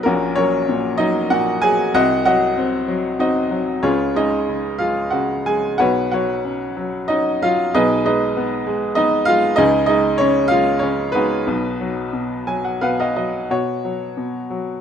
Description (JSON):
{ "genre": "classical, lyrical solo piano", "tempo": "85-101 BPM", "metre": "3/4", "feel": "rubato", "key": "B lydian", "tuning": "A4 = 441 Hz", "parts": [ { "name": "bright upright piano", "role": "solo", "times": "0.0-14.8 s", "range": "A#1 to G#5", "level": "-16 LUFS", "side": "equal", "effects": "none" } ], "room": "light reverb", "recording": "close, detailed microphones", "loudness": "-16 LUFS", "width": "side -8 dB against mid", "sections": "0.0-13.5 A section; 13.5-14.8 B section", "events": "upright piano fill 12.1-13.5", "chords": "0.0 F#/A#; 1.9 Cdim; 3.8 C#; 5.8 Bsus2; 7.7 G#m/B; 9.6 C#; 11.5 B; 13.5 B5" }